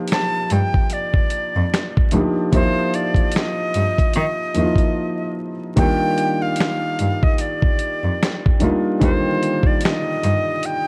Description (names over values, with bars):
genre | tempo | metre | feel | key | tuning
lo-fi hip hop | 74 BPM | 4/4 | swing 56% on 16ths | Eb major | A4 = 445 Hz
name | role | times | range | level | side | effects
felt-muted upright piano | accompaniment | 0.0-10.9 s | D3 to G4 | -25 LUFS | equal | none
breathy bright jazz flute | melody | 0.1-10.9 s | C5 to A5 | -26 LUFS | equal | none
dusty soul sampler-style drum kit | drums | 0.1-10.8 s | finger snaps, hi-hat, kick drum, snare drum | -21 LUFS | equal | none
clear cello | bass | 0.5-10.3 s | D2 to Eb3 | -23 LUFS | equal | none
room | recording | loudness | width
light reverb, small room ambience | vinyl crackle | -19 LUFS | mono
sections
0.0-5.8 A section; 5.8-10.9 B section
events
break 5.0-5.8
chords
0.0 Ebmaj9